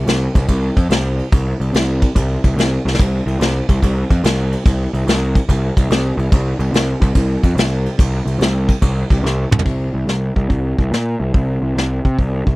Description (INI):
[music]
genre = blues rock power trio and southern rock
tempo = 144 BPM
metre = 4/4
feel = swing 67% on 8ths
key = unclear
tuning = A4 = 440 Hz
[part]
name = fuzz picked electric bass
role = bass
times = 0.0-12.6 s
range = C2 to C3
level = -17 LUFS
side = equal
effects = overdrive
[part]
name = vintage brush drum kit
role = drums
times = 0.1-12.5 s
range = crash cymbal, hi-hat, kick drum, ride cymbal, snare drum, toms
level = -16 LUFS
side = equal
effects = none
[sound]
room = little or no reverb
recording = dry, close 1970s-style studio recording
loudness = -14 LUFS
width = side -20 dB against mid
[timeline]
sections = 0.0-9.7 A section; 9.7-12.6 B section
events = drum fill 2.8, 9.2-9.7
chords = none